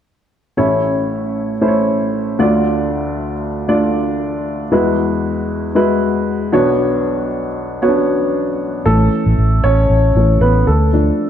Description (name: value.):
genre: pop.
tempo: 116 BPM.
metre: 4/4.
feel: swing 56% on 16ths.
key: A major.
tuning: A4 = 440 Hz.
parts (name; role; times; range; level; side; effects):
dark baby grand piano; accompaniment; 0.6-11.3 s; A1 to D5; -14 LUFS; equal; none.
vintage muted fingered electric bass; bass; 8.9-11.1 s; A1 to D2; -13 LUFS; equal; none.
room: moderate concert hall reverb, RT60 2.1 s.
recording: none.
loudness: -13 LUFS.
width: side -9 dB against mid.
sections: 0.6-8.9 A section; 8.9-11.3 B section.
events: grand piano solo 8.9-11.3.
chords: 0.6 A; 2.4 Dm; 4.7 Eadd9; 6.5 Bmadd9; 8.9 A; 10.7 Dm.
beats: | 0.58 1.10 1.61 2.13 | 2.65 3.17 3.69 4.20 | 4.72 5.24 5.76 6.27 | 6.79 7.31 7.83 8.35 | 8.86 9.38 9.90 10.42 | 10.93.